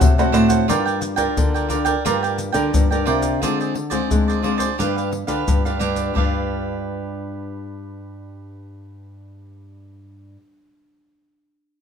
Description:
samba and choro; 88 BPM; 4/4; straight; A4 = 443 Hz
cavaquinho; accompaniment; 0.0-10.4 s; D4 to G5; -23 LUFS; right 8 dB
nylon-string guitar; accompaniment; 0.0-10.4 s; A2 to B4; -24 LUFS; left 4 dB
nylon-string guitar; bass; 0.0-10.4 s; G2 to Ab3; -25 LUFS; right 1 dB
maracas, surdo, pandeiro and tamborim; percussion; 0.0-6.3 s; -21 LUFS; left 2 dB
moderate large studio reverb, RT60 0.9 s; minimal, uncompressed stereo recording; -18 LUFS; side -7 dB against mid
0.7-6.2 A section; 6.2-8.9 B section
0.0 D7; 0.7 Gm7; 3.4 Dm7b5; 4.8 G7

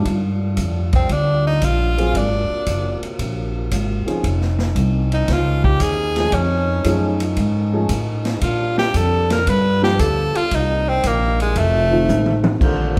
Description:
jazz, big band swing; 115 BPM; 4/4; swing 69% on 8ths; Bb major; A4 = 439 Hz
warm baby grand piano; accompaniment; 0.0-12.9 s; D3 to Ab4; -25 LUFS; equal
bright trombone section; sustained chords; 0.0-12.6 s; C3 to A4; -32 LUFS; equal
upright bass; bass; 0.0-13.0 s; F1 to Bb2; -22 LUFS; equal
swinging big-band drum kit; drums; 0.1-13.0 s; crash cymbal, hi-hat, kick drum, ride cymbal, snare drum, toms; -26 LUFS; equal
edgy tenor saxophone; melody; 1.0-12.5 s; Ab3 to B4; -22 LUFS; equal
warm saxophone section; melody; 12.6-13.0 s; Bb2 to A3; -25 LUFS; equal
wet large studio reverb, RT60 1.3 s; heard from further back in the room; -18 LUFS; mono
0.0-12.6 A section
tenor saxophone solo 0.0-12.6; drum fill 12.1-12.6
0.1 Bbmaj13; 2.1 Ab13; 4.2 Dbmaj9; 6.3 F7alt; 8.4 Bb69; 9.5 G7; 10.5 Cm7; 11.6 F7

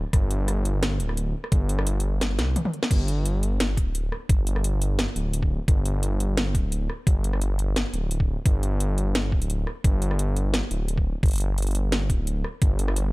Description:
half-time drum and bass; 173 BPM; 4/4; swing 53% on 16ths, half-time; A4 = 437 Hz
dark detuned saw bass; bass; 0.0-13.1 s; D1 to C2; -24 LUFS; equal
drum and bass drum kit; drums; 0.1-13.0 s; crash cymbal, hi-hat, rim click, snare drum, toms; -29 LUFS; equal
electronic kick drum; drums; 0.1-12.7 s; -21 LUFS; equal
little or no reverb; -22 LUFS; side -23 dB against mid
0.0-2.9 A section; 2.9-13.1 A section
drop 0.0-2.9, 2.9-13.1; drum fill 2.4-2.9

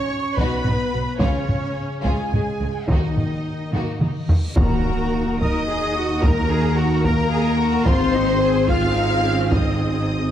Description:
cinematic, epic orchestral film score; 72 BPM (dotted quarters); 6/8; straight; Eb minor; A4 = 440 Hz
warm symphonic violin section; melody; 0.0-10.3 s; Db5 to F6; -30 LUFS; equal
rich symphonic viola section; accompaniment; 0.0-10.3 s; C4 to Db5; -30 LUFS; right 2 dB
mellow French horn section; sustained chords; 0.0-10.3 s; Db3 to F4; -25 LUFS; left 4 dB
rich symphonic violin section; second line; 0.4-10.3 s; Ab3 to F5; -29 LUFS; left 2 dB
rich symphonic cello section; bass; 0.4-10.3 s; B2 to Bb4; -29 LUFS; right 2 dB
rich symphonic double bass section; bass; 0.4-10.3 s; Ab1 to Eb2; -24 LUFS; right 2 dB
taiko ensemble; drums; 0.4-10.0 s; -22 LUFS; equal
timpani; percussion; 2.9-5.4 s; Eb3; -30 LUFS; left 2 dB
reverse cymbal and impact; sound effects; 4.4-6.2 s; -28 LUFS; equal
warm trumpet section; stabs; 4.6-10.3 s; Bb4 to F5; -29 LUFS; equal
moderate scoring stage reverb, RT60 1.9 s; dark, warm production; -18 LUFS; side -10 dB against mid
0.0-4.6 A section; 4.6-10.3 B section
drum fill 3.7-4.6; reverse cymbal 4.4; impact 4.6-6.2
0.0 B; 1.2 Db; 2.9 Ebm; 7.9 Ab

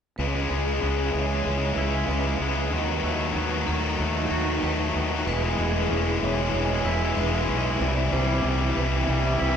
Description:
post-rock; 94 BPM; 4/4; straight; A4 = 439 Hz
icy glass pad; sustained chords; 1.1-9.6 s; G3 to E5; -34 LUFS; right 2 dB; chorus, built-in reverb
twangy electric guitar; arpeggios; 0.2-9.6 s; E2 to F#4; -31 LUFS; equal
vibraphone with hard mallets; arpeggios; 0.2-9.6 s; G#4 to D#5; -34 LUFS; right 4 dB
distorted electric guitar; riff; 0.2-9.6 s; C3 to G#3; -26 LUFS; left 4 dB; overdrive
fuzz fingered electric bass; bass; 0.2-9.6 s; E1 to D#2; -27 LUFS; right 1 dB; overdrive
wet recital hall reverb, RT60 1.5 s; recorded in a church or concert hall; -22 LUFS; side -8 dB against mid
0.2-9.6 A section
build-up 0.2-9.6
0.2 C#m7; 2.7 B7/D#; 5.3 E6; 7.8 Cmaj7

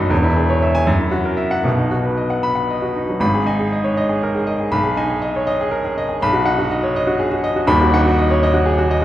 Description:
classical, virtuoso piano study; 79 BPM (dotted quarters); 6/8; uneven beats, rubato; B major, G# minor from 3.2 s; A4 = 438 Hz
clear baby grand piano; solo; 0.0-9.0 s; D#1 to B5; -15 LUFS; equal
wet recital hall reverb, RT60 1.8 s; heard from further back in the room, nothing above 10.9 kHz; -15 LUFS; side -13 dB against mid
0.0-3.2 A section; 3.2-9.0 B section
0.1 C#m/E; 0.9 F#7; 1.7 B; 3.2 G#m; 4.7 G#m/B; 6.2 B; 7.7 B/D#

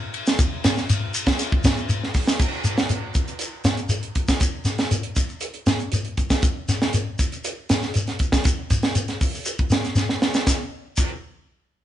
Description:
afrobeat; 119 BPM; 4/4; straight
tight funk drum kit; drums; 0.1-11.1 s; crash cymbal, hi-hat, kick drum, ride cymbal, snare drum; -21 LUFS; right 1 dB
shekere; percussion; 0.1-11.1 s; -25 LUFS; left 2 dB
light reverb; band playing live in one room, nothing above 10.9 kHz; -20 LUFS; side -12 dB against mid
0.0-2.4 A section; 2.4-10.5 B section; 10.5-11.8 C section
drum fill 10.0-10.5

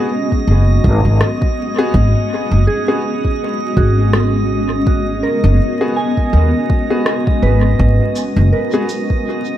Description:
ambient dub; 82 BPM; 4/4; swing 57% on 16ths; G# minor; A4 = 440 Hz
granular cloud pad; sustained chords; 0.0-9.6 s; G#3 to D#5; -20 LUFS; equal; built-in reverb
soft synth bell; arpeggios; 0.0-9.6 s; F#4 to G#5; -24 LUFS; right 4 dB; chorus, analog delay
warm upright piano; stabs; 0.0-8.9 s; B3 to G#4; -21 LUFS; left 2 dB; dub echo
drifting glass-harmonics texture; texture; 0.0-9.6 s; D#5; -25 LUFS; right 1 dB; chorus, built-in reverb
electronic kick drum; drums; 0.3-9.2 s; -16 LUFS; equal
upright bass; bass; 0.5-8.5 s; F#1 to D#2; -12 LUFS; equal
electronic rim click and shaker; drums; 1.2-9.1 s; -24 LUFS; equal; dub echo
light reverb; echo-heavy mix, vinyl crackle; -12 LUFS; side -12 dB against mid
0.0-9.6 A section
0.0 G#m7

